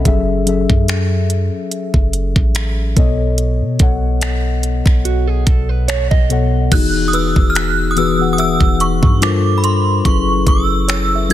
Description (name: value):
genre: contemporary R&B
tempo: 72 BPM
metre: 4/4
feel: swing 54% on 16ths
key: unclear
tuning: A4 = 440 Hz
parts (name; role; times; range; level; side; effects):
- muted felt-like synth keys; accompaniment; 0.0-11.3 s; B2 to F#5; -18 LUFS; left 5 dB; chorus
- clean 808-style bass; bass; 0.0-11.3 s; E1 to B2; -17 LUFS; equal; none
- trap drum kit; drums; 0.1-11.3 s; crash cymbal, finger snaps, hi-hat, kick drum; -16 LUFS; equal; soft clipping on snare
- mellow electric guitar; arpeggios; 5.0-6.7 s; F#4 to D#5; -23 LUFS; right 11 dB; ping-pong delay
- synth chime; melody; 6.7-11.3 s; B5 to F#6; -18 LUFS; right 2 dB; ensemble chorus, ping-pong delay
- soft round pluck; texture; 7.1-11.3 s; B4 to E5; -31 LUFS; right 3 dB; chorus, ping-pong delay
room: little or no reverb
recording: dense, heavily limited modern master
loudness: -13 LUFS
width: side -12 dB against mid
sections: 0.0-6.7 A section; 6.7-11.3 B section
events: none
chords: 0.1 F#m9; 3.0 B9; 6.7 Emaj9; 9.2 Gm11; 10.1 F#m11